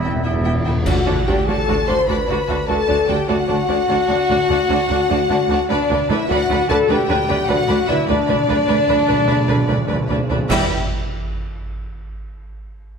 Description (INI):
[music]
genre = cinematic, heroic adventure film score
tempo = 100 BPM (dotted quarters)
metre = 12/8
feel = straight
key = E minor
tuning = A4 = 435 Hz
[part]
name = bright symphonic violin section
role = melody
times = 0.0-10.7 s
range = D5 to C6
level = -26 LUFS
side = left 3 dB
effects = none
[part]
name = bright large flute ensemble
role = second line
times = 0.0-0.6 s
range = E5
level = -32 LUFS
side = left 2 dB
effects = none
[part]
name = clear symphonic violin section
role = second line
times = 0.0-10.7 s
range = B4 to B5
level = -27 LUFS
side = left 1 dB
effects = none
[part]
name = warm clarinet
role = second line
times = 0.0-0.9 s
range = B3 to C4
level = -28 LUFS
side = left 1 dB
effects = none
[part]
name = warm oboe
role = second line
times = 0.0-0.6 s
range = E4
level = -32 LUFS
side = right 4 dB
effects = none
[part]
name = rich symphonic viola section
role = accompaniment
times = 0.0-10.7 s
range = G3 to B4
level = -25 LUFS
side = right 3 dB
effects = none
[part]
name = clear trombone section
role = sustained chords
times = 0.0-0.6 s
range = B2 to G3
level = -34 LUFS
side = right 3 dB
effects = none
[part]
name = mellow French horn section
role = sustained chords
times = 0.0-10.7 s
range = D4 to C5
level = -19 LUFS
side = left 3 dB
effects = none
[part]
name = rich studio cello section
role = bass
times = 0.0-10.7 s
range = D2 to E2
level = -24 LUFS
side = right 4 dB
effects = none
[part]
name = rich symphonic double bass section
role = bass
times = 0.0-10.7 s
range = E1 to D2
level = -26 LUFS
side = right 5 dB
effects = none
[part]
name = timpani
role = percussion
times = 0.0-0.8, 5.7-10.7 s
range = E2 to B2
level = -24 LUFS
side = right 1 dB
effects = none
[part]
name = clash cymbals and concert bass drum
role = percussion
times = 0.9-1.6, 10.5-11.3 s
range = none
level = -26 LUFS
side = right 1 dB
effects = none
[sound]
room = moderate scoring stage reverb, RT60 1.8 s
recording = none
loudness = -15 LUFS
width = side -6 dB against mid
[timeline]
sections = 0.9-10.5 A section; 10.5-12.9 B section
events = timpani fill 0.0-0.9, 5.7-10.5; band accent 0.9-1.3, 10.5-10.9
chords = 0.0 Em; 0.9 D; 5.7 Bm/D; 10.5 Em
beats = 0.25 | 0.87 1.48 2.09 2.69 | 3.29 3.89 4.50 5.10 | 5.70 6.29 6.88 7.48 | 8.08 8.68 9.28 9.89 | 10.51 11.11